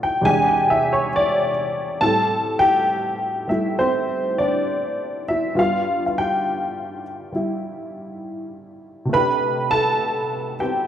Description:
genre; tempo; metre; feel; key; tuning
solo jazz; 68 BPM; 4/4; swing 66% on 8ths; A minor; A4 = 436 Hz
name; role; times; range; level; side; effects
honky-tonk upright piano; solo; 0.0-10.9 s; E2 to B5; -19 LUFS; equal; none
room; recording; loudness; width
moderate large studio reverb, RT60 1.1 s; band playing live in one room; -18 LUFS; side -10 dB against mid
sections
0.0-2.0 A section; 2.0-10.9 B section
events
honky-tonk piano solo 0.0-2.0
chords
0.2 E7alt; 2.0 Am7; 5.6 G7; 9.1 Csus2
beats
0.23 1.12 | 2.01 2.89 3.78 4.67 | 5.55 6.44 7.33 8.22 | 9.10 9.99

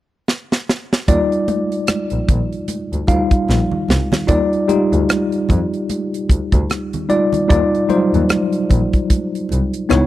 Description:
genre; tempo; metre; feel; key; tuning
lush 1970s-style soul; 75 BPM; 4/4; swing 58% on 16ths; unclear; A4 = 441 Hz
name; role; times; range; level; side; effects
tight funk drum kit; drums; 0.3-10.1 s; hi-hat, kick drum, rim click, snare drum; -16 LUFS; equal; none
tine electric piano; accompaniment; 1.1-10.1 s; F#3 to F5; -17 LUFS; left 1 dB; medium stereo tremolo
clear double bass; bass; 1.1-10.0 s; Bb1 to F2; -19 LUFS; equal; none
congas; percussion; 1.1-10.1 s; none; -27 LUFS; right 4 dB; none
room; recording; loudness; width
small room ambience; dry, close 1970s-style studio recording; -15 LUFS; side -14 dB against mid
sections
0.0-1.1 A section; 1.1-4.3 B section; 4.3-10.1 C section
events
drum fill 0.3-1.1, 3.5-4.3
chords
0.0 N.C.; 1.1 Ebmaj9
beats
0.28 | 1.08 1.88 2.69 3.49 | 4.29 5.09 5.89 6.69 | 7.49 8.29 9.10 9.90

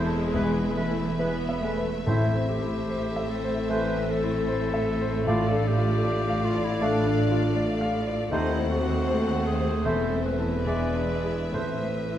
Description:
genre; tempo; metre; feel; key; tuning
classical, romantic movement for piano and orchestra; 76 BPM; 4/4; uneven beats, rubato; A minor; A4 = 440 Hz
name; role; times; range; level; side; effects
clear concert grand piano; melody; 0.0-12.2 s; D#2 to F#5; -30 LUFS; left 2 dB; none
rich studio violin section; melody; 0.0-12.2 s; E5 to F#5; -40 LUFS; left 3 dB; none
mellow clarinet; second line; 0.0-12.2 s; D4 to B4; -32 LUFS; left 2 dB; none
warm oboe; second line; 0.0-11.9 s; B4 to D5; -38 LUFS; right 2 dB; none
warm studio violin section; second line; 0.0-12.2 s; B4 to D5; -38 LUFS; left 1 dB; none
mellow bassoon; accompaniment; 0.0-11.9 s; G#3 to A3; -36 LUFS; right 2 dB; none
rich studio viola section; accompaniment; 0.0-12.2 s; G#3 to B3; -31 LUFS; right 1 dB; none
bright studio cello section; bass; 0.0-12.2 s; D#2 to A2; -34 LUFS; right 2 dB; none
warm studio double bass section; bass; 0.0-12.2 s; E1 to D#2; -32 LUFS; right 2 dB; none
concert flute; second line; 0.3-12.0 s; D#5 to F5; -36 LUFS; left 1 dB; none
dark French horn section; sustained chords; 0.3-12.2 s; G#3 to F4; -34 LUFS; left 3 dB; none
timpani; percussion; 0.4-12.2 s; E2 to A2; -33 LUFS; equal; none
room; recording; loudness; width
moderate scoring stage reverb, RT60 2.0 s; dark, warm production; -23 LUFS; side -11 dB against mid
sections
0.0-12.2 A section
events
none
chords
0.3 E; 2.1 Am; 5.3 Dm/A; 8.3 D#dim7; 9.9 Am/E; 10.7 E7; 11.5 Am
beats
0.34 1.19 | 2.06 2.88 3.69 4.48 | 5.26 6.04 6.81 7.57 | 8.32 9.07 9.85 10.66 | 11.53

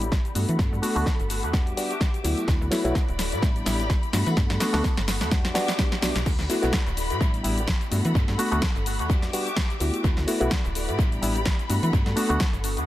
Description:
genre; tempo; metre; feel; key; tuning
filtered disco house; 127 BPM; 4/4; swing 56% on 16ths; D major; A4 = 440 Hz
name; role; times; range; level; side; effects
reed electric piano; accompaniment; 0.0-12.4 s; F#3 to G4; -28 LUFS; equal; phaser, sidechain pumping, low-pass filter, dub echo
rich symphonic string section; sustained chords; 0.0-12.9 s; F#4 to D6; -33 LUFS; left 2 dB; sidechain pumping, low-pass filter
slap-like FM bass; bass; 0.0-12.9 s; D1 to E3; -27 LUFS; equal; sidechain pumping, low-pass filter
house drum kit; drums; 0.0-12.9 s; crash cymbal, hi-hat, shaker, snare drum; -30 LUFS; equal; sidechain pumping on hats, sidechain pumping on perc, sidechain pumping on cymbals, dub echo
tambourine; percussion; 0.0-6.2 s; none; -45 LUFS; right 2 dB; none
electronic kick drum; drums; 0.1-12.5 s; none; -24 LUFS; equal; none
room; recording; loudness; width
light reverb; echo-heavy mix; -22 LUFS; side -14 dB against mid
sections
0.0-6.3 A section; 6.3-12.9 B section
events
build-up 0.0-6.3; drum fill 0.0-6.3; filter sweep 0.0-6.3; drop 6.3-12.9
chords
0.4 Gmaj9; 1.5 Em7; 2.5 D6; 3.4 A9sus4; 4.1 Gmaj9; 5.3 Em7; 6.3 D6; 7.2 A9sus4; 7.9 Gmaj9; 9.1 Em7; 10.0 D6; 11.0 A9sus4; 11.7 Gmaj9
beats
0.12 | 0.59 1.06 1.54 2.01 | 2.48 2.95 3.43 3.90 | 4.37 4.84 5.32 5.79 | 6.26 6.73 7.21 7.68 | 8.15 8.62 9.10 9.57 | 10.04 10.51 10.98 11.46 | 11.93 12.40

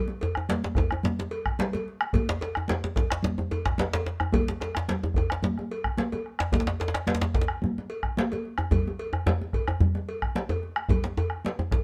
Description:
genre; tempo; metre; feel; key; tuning
west african traditional, West African drum ensemble; 110 BPM; 4/4; straight; none; none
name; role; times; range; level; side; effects
congas; percussion; 0.1-11.6 s; none; -34 LUFS; equal; none
djembe; percussion; 0.1-11.7 s; none; -34 LUFS; equal; none
cowbell; percussion; 0.2-11.8 s; none; -37 LUFS; equal; none
djembe; percussion; 0.2-11.8 s; none; -31 LUFS; equal; none
bombo; percussion; 0.4-11.8 s; none; -31 LUFS; equal; none
room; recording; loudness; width
light reverb; dark, warm production; -28 LUFS; mono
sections
0.0-11.8 A section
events
none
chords
none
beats
0.49 1.04 1.59 | 2.14 2.69 3.24 3.79 | 4.33 4.88 5.43 5.98 | 6.53 7.07 7.62 8.17 | 8.72 9.26 9.81 10.36 | 10.90 11.45

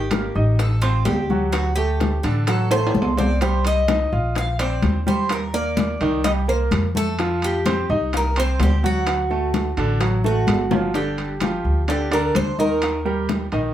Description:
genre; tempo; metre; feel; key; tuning
latin, Cuban son and guajira; 128 BPM; 4/4; straight; G minor; A4 = 439 Hz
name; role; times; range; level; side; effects
Cuban tres; melody; 0.0-13.3 s; F4 to F5; -25 LUFS; right 1 dB; none
bright baby grand piano; arpeggios; 0.0-13.7 s; D3 to F5; -24 LUFS; right 1 dB; none
upright bass; bass; 0.0-13.7 s; G1 to F2; -22 LUFS; equal; none
bongos; percussion; 0.1-13.5 s; none; -29 LUFS; left 5 dB; none
congas; percussion; 0.1-13.7 s; none; -26 LUFS; left 3 dB; none
timbales; percussion; 0.1-13.7 s; none; -29 LUFS; right 2 dB; none
room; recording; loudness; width
wet studio reverb, RT60 0.6 s; heard from further back in the room; -18 LUFS; side -11 dB against mid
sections
0.0-10.9 A section; 10.9-13.7 B section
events
drum fill 2.7-3.4, 10.2-10.9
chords
0.0 Absus2; 0.6 Adim; 1.5 D; 3.4 Bbsus2; 5.3 Eb; 6.2 C5; 7.2 F5; 8.1 Cmadd9; 9.1 D; 10.9 G5; 12.8 Eb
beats
0.12 0.59 1.06 | 1.53 2.00 2.48 2.95 | 3.42 3.89 4.36 4.83 | 5.30 5.78 6.25 6.72 | 7.19 7.66 8.13 8.60 | 9.07 9.54 10.01 10.47 | 10.94 11.41 11.88 12.35 | 12.82 13.29

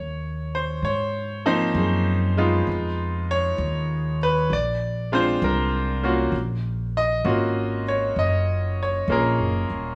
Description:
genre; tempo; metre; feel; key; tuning
jazz ballad; 65 BPM; 4/4; swing 68% on 8ths; unclear; A4 = 439 Hz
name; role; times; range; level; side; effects
bright grand piano; accompaniment; 0.0-9.9 s; F3 to Eb5; -26 LUFS; equal; none
upright bass; bass; 0.0-9.9 s; Eb1 to Ab2; -27 LUFS; equal; none
room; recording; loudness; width
little or no reverb; small room ambience; -23 LUFS; mono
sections
0.0-9.9 A section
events
none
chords
0.0 Dbmaj13; 2.7 Fm7b5; 4.5 Bb7; 6.3 Ebm7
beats
0.83 1.75 | 2.67 3.58 4.50 5.42 | 6.33 7.25 8.17 9.09

